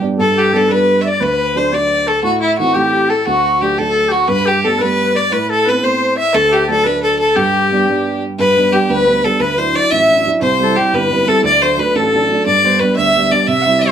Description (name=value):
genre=celtic folk, Celtic jig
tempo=117 BPM (dotted quarters)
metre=6/8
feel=straight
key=G major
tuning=A4 = 438 Hz
part: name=clear fiddle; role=melody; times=0.0-13.9 s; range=E4 to E5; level=-14 LUFS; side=left 1 dB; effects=none
part: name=dark baby grand piano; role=accompaniment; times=0.0-13.9 s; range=G1 to E4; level=-18 LUFS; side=right 4 dB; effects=none
part: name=bright reedy wooden flute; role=second line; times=0.2-13.9 s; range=E4 to F#5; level=-18 LUFS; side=left 3 dB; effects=none
room=moderate studio ambience, RT60 0.5 s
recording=none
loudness=-11 LUFS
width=side -8 dB against mid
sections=0.2-8.4 A section; 8.4-13.9 B section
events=none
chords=0.2 G; 1.2 D; 2.2 Am; 3.3 D; 4.3 Gadd9; 5.3 Amadd9; 6.3 D; 7.4 G; 9.4 Dadd9; 10.4 C; 11.4 D; 12.5 G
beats=| 0.18 0.70 | 1.21 1.72 | 2.24 2.75 | 3.27 3.78 | 4.29 4.80 | 5.32 5.83 | 6.34 6.85 | 7.36 7.87 | 8.38 8.89 | 9.40 9.91 | 10.43 10.93 | 11.44 11.95 | 12.46 12.97 | 13.48